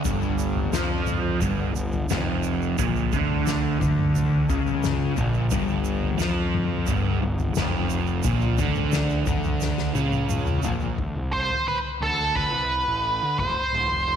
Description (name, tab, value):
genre	psychedelic rock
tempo	88 BPM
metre	4/4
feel	straight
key	unclear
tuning	A4 = 440 Hz
part	fuzz guitar	riff	0.0-11.0 s	F2 to F3	-25 LUFS	right 1 dB	distortion, phaser
part	tube shaker	percussion	0.0-10.9 s	none	-41 LUFS	right 16 dB	none
part	fuzz fingered electric bass	bass	0.1-14.2 s	D1 to D3	-28 LUFS	right 1 dB	overdrive
part	soft-mallet drum kit	drums	0.1-13.9 s	kick drum, snare drum, toms	-27 LUFS	left 3 dB	none
part	octave-fuzz lead guitar	melody	11.3-14.2 s	A4 to C5	-22 LUFS	right 2 dB	wah, distortion, slapback echo
room	light reverb, studio reverb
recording	1960s-style stereo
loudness	-22 LUFS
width	side -8 dB against mid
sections	0.0-11.0 A section; 11.0-14.2 B section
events	drum fill 9.6-11.0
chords	0.0 G5; 11.0 D5; 13.4 F5